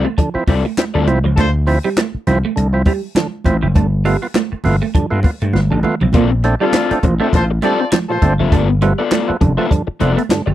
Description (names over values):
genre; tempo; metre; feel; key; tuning
funk; 101 BPM; 4/4; swing 56% on 16ths; unclear; A4 = 440 Hz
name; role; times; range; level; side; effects
crunchy overdriven guitar; accompaniment; 0.0-1.3, 6.1-10.5 s; B3 to E5; -19 LUFS; left 7 dB; none
semi-hollow electric guitar; riff; 0.0-10.5 s; F3 to Bb3; -22 LUFS; right 7 dB; ensemble chorus
vintage slap bass; bass; 0.0-10.5 s; F1 to G2; -16 LUFS; equal; none
overdriven tonewheel organ; stabs; 0.2-10.4 s; G2 to F4; -19 LUFS; right 3 dB; none
compact cocktail drum kit; drums; 0.2-10.5 s; handclaps, hi-hat, kick drum, snare drum, toms; -16 LUFS; left 1 dB; none
congas; percussion; 0.5-10.5 s; none; -24 LUFS; right 5 dB; none
warm horn section; second line; 1.4-1.5, 6.6-8.3 s; D4 to D5; -19 LUFS; left 2 dB; none
room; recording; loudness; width
little or no reverb; dry, close 1970s-style studio recording; -13 LUFS; side -13 dB against mid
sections
0.0-6.1 A section; 6.1-10.5 B section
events
drum fill 5.5-6.1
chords
0.0 Dm7; 3.8 G9; 6.1 Bbmaj9; 8.5 G9